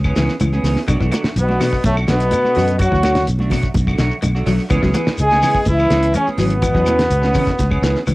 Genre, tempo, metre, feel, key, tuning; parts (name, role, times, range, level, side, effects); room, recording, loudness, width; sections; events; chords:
afrobeat; 125 BPM; 4/4; straight; B dorian; A4 = 442 Hz
fingered electric bass; bass; 0.0-8.1 s; G#1 to F#2; -18 LUFS; equal; transformer saturation
damped 70s drum kit; drums; 0.0-8.1 s; hi-hat, kick drum, snare drum; -21 LUFS; equal
claves; percussion; 0.0-8.1 s; -33 LUFS; left 2 dB
shekere; percussion; 0.0-8.1 s; -30 LUFS; left 1 dB
semi-hollow electric guitar; stabs; 0.1-8.0 s; E3 to G#4; -24 LUFS; right 3 dB; lush chorus, tape echo
clean electric guitar; arpeggios; 0.2-8.1 s; B2 to F#3; -24 LUFS; left 3 dB; ensemble chorus
congas; percussion; 0.2-8.1 s; -25 LUFS; right 1 dB
trombone with plunger mute; melody; 1.4-8.0 s; A3 to G#4; -18 LUFS; equal; cassette tape
brilliant trumpet; second line; 1.4-8.0 s; A3 to G#4; -26 LUFS; right 1 dB
muted trombone section; second line; 1.4-8.0 s; A2 to G#3; -24 LUFS; left 1 dB
light reverb; home recording on cassette; -14 LUFS; side -20 dB against mid
0.0-8.1 A section
0.0 C#m7; 0.9 Bm7; 4.7 C#m7